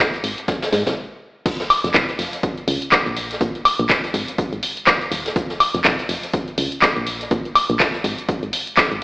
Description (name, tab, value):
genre	piano house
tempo	123 BPM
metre	4/4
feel	swing 58% on 16ths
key	F minor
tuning	A4 = 438 Hz
part	solid FM bass	bass	0.0-9.0 s	Eb1 to Ab2	-24 LUFS	equal	sidechain pumping
part	vintage brush drum kit	drums	0.0-9.0 s	hi-hat, snare drum	-28 LUFS	equal	high-pass filter on hats, high-pass filter on snare, high-pass filter on room
part	punchy analog drum machine	drums	0.1-9.0 s	crash cymbal, handclaps, hi-hat, woodblock	-18 LUFS	equal	none
part	electronic kick drum	drums	0.5-8.9 s	none	-24 LUFS	equal	none
room	moderate lush hall reverb, RT60 2.4 s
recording	played on a big sound system in a bare room, stone room reverb, AM radio sound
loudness	-17 LUFS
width	side -24 dB against mid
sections	0.0-1.5 A section; 1.5-9.0 B section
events	stop 1.0-1.5; drop 1.5-9.0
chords	none